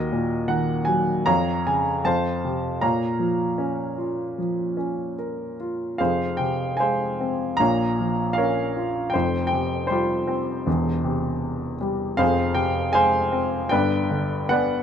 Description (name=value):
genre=classical, lyrical solo piano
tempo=78 BPM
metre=4/4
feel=rubato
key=Bb minor, F harmonic minor from 6.0 s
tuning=A4 = 440 Hz
part: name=warm baby grand piano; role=solo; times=0.0-14.8 s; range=E1 to Bb5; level=-21 LUFS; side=equal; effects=none
room=light reverb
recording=dark, warm production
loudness=-21 LUFS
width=side -8 dB against mid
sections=0.0-6.0 A section; 6.0-14.8 B section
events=none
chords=0.0 Ebm; 1.3 Bbm/F; 2.1 F; 2.8 Bbm; 6.0 Fm; 7.6 Bbm; 9.1 Fsus2; 10.7 C/E; 12.2 Fm; 13.7 G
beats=0.49 1.27 2.06 | 2.83 3.59 4.37 5.18 | 6.00 6.80 7.59 8.38 | 9.14 9.91 10.67 11.43 | 12.18 12.93 13.71 14.49